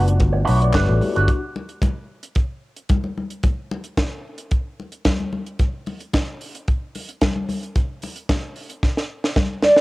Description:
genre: disco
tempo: 111 BPM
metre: 4/4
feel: straight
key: unclear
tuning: A4 = 440 Hz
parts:
  - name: electric guitar with an envelope filter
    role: accompaniment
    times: 0.0-1.3 s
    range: D4 to B4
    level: -24 LUFS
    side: right 3 dB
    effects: wah, cassette tape
  - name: mellow tine electric piano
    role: accompaniment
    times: 0.0-1.4 s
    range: A3 to E5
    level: -25 LUFS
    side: left 4 dB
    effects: medium stereo tremolo, cassette tape
  - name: fingered electric bass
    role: bass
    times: 0.0-1.3 s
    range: F#1 to B1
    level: -17 LUFS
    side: equal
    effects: none
  - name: tight funk drum kit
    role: drums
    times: 0.1-9.8 s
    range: hi-hat, kick drum, snare drum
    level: -21 LUFS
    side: equal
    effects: none
  - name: congas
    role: percussion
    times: 0.7-9.8 s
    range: none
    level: -28 LUFS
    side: left 3 dB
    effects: none
  - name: group handclap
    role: percussion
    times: 0.7-0.9 s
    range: none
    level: -34 LUFS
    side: left 5 dB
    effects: none
  - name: vibraphone with soft mallets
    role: melody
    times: 9.6-9.8 s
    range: D5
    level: -10 LUFS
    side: right 1 dB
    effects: cassette tape
room: light reverb, small room ambience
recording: home recording on cassette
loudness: -19 LUFS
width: side -20 dB against mid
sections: 0.0-1.3 A section; 1.3-9.8 B section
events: drum fill 8.8-9.8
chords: 0.0 Gmaj7; 1.3 N.C.

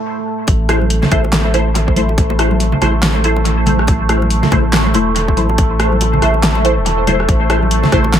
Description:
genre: deep dubstep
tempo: 141 BPM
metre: 4/4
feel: swing 59% on 16ths, half-time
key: A minor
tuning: A4 = 440 Hz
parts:
  - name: deep dark ambient pad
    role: sustained chords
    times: 0.0-8.2 s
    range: A3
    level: -19 LUFS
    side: right 1 dB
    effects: chorus, built-in reverb
  - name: saturated sub bass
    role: bass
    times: 0.5-8.2 s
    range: E1 to A1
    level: -16 LUFS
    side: equal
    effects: high-pass filter
  - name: deep house drum kit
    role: drums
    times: 0.5-8.2 s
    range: handclaps, hi-hat, rim click, snare drum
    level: -18 LUFS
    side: equal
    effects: analog delay
  - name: electronic kick drum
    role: drums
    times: 0.5-8.0 s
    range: none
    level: -14 LUFS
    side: equal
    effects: overdrive, high-pass filter on kick
  - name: bongos and congas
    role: percussion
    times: 0.5-8.1 s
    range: none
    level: -22 LUFS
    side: right 1 dB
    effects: dub echo
  - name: filtered dub chord stab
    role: stabs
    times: 0.7-8.0 s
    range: A3 to C5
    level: -18 LUFS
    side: left 1 dB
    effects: phaser, ensemble chorus, dub echo
room: light reverb, digital ambience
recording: echo-heavy mix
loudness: -11 LUFS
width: side -9 dB against mid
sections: 0.5-8.2 A section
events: break 0.0-0.5; drop 0.5-8.2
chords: 0.5 Am

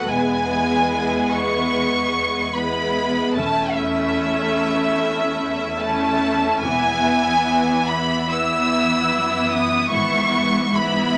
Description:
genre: classical, slow romantic movement for string orchestra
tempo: 73 BPM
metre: 4/4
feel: uneven beats, rubato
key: E major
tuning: A4 = 440 Hz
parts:
  - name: rich studio violin section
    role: melody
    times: 0.0-11.2 s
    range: E5 to E6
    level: -23 LUFS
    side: equal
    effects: none
  - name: rich studio violin section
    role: second line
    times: 0.0-11.2 s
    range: E4 to E5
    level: -28 LUFS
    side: equal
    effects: none
  - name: rich studio viola section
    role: accompaniment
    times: 0.0-11.2 s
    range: E3 to C#4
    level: -24 LUFS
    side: equal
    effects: none
  - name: warm symphonic cello section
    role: bass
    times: 0.0-11.2 s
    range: E2 to G#2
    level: -32 LUFS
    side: equal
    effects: none
  - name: rich studio double bass section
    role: bass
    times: 0.1-10.7 s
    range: E1 to G#1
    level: -37 LUFS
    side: equal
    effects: none
room: moderate studio reverb, RT60 0.5 s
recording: none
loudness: -20 LUFS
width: mono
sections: 0.0-11.2 A section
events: none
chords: 0.1 E; 3.4 A/E; 6.6 E; 9.9 E/G#

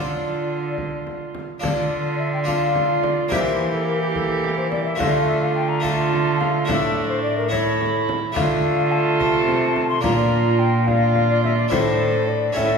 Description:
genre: classical, renaissance-style consort dance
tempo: 71 BPM (dotted quarters)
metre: 6/8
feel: straight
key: D minor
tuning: A4 = 440 Hz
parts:
  - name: mellow hollow alto recorder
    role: melody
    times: 0.0-12.8 s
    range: G4 to C6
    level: -24 LUFS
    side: left 4 dB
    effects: none
  - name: warm viola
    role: second line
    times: 0.0-12.8 s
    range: D4 to A4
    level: -25 LUFS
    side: right 6 dB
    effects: none
  - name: harpsichord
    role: accompaniment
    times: 0.0-12.8 s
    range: A2 to A4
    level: -27 LUFS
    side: equal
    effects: none
  - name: mellow bassoon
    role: accompaniment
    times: 0.0-12.8 s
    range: A3 to D4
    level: -27 LUFS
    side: left 3 dB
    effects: none
  - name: dark cello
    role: bass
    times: 0.0-12.8 s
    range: A2 to E3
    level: -24 LUFS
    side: right 2 dB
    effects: none
  - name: frame drum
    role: percussion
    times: 0.8-12.8 s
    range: none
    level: -30 LUFS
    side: left 3 dB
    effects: none
room: wet recital hall reverb, RT60 1.6 s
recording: heard from further back in the room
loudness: -18 LUFS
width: side -5 dB against mid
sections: 0.0-1.6 A section; 1.6-12.8 A section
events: none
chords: 0.0 Dm; 3.3 Edim; 5.0 Dm; 6.7 Asus4; 7.5 A; 8.4 Dm; 10.0 Bb; 11.7 Asus4

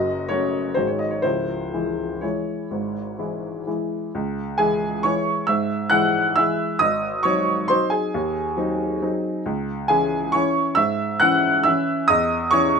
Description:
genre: classical, piano waltz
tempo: 119-144 BPM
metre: 3/4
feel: rubato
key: C# minor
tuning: A4 = 444 Hz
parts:
  - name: warm upright piano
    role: solo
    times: 0.0-12.8 s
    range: C#1 to F#6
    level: -19 LUFS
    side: equal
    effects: none
room: light reverb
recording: minimal, uncompressed stereo recording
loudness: -19 LUFS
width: side -5 dB against mid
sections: 0.0-4.1 A section; 4.1-12.8 B section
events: none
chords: 0.0 F#m; 0.8 G#5; 1.2 C#m; 6.8 G#7; 9.5 C#m; 12.1 C#m/E

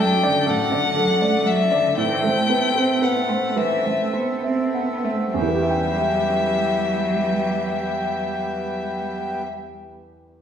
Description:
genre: neoclassical piano and strings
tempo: 33-42 BPM (dotted quarters)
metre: 6/8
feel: rubato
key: E minor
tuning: A4 = 439 Hz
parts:
  - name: rich violin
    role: melody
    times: 0.0-9.4 s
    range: E5 to G5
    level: -23 LUFS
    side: left 5 dB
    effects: none
  - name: warm cello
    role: second line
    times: 0.0-9.4 s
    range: A2 to C4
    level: -25 LUFS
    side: right 3 dB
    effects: none
  - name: warm upright piano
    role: accompaniment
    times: 0.0-10.4 s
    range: E2 to G5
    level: -24 LUFS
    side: right 2 dB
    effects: none
  - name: pedal harmonium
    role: sustained chords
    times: 0.0-9.4 s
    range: A3 to G5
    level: -28 LUFS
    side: equal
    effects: none
room: wet recital hall reverb, RT60 1.6 s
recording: recorded in a church or concert hall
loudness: -19 LUFS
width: side -8 dB against mid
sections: 0.0-5.3 A section; 5.3-8.9 B section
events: slowing down 0.0-5.3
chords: 0.0 D/F#; 2.0 Amadd9; 5.3 Em

